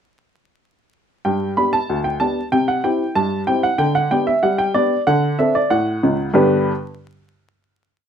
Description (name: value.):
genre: ragtime piano.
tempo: 94 BPM.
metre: 2/4.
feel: straight.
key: G major.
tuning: A4 = 439 Hz.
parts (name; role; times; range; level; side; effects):
warm upright piano; solo; 1.2-6.7 s; C#2 to B5; -16 LUFS; equal; none.
room: moderate club reverb, RT60 0.6 s.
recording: vinyl crackle.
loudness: -16 LUFS.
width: side -8 dB against mid.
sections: 1.2-6.4 A section; 6.4-7.6 final chord.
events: none.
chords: 1.2 G; 2.5 C; 3.8 G/D; 5.1 D7; 6.4 G.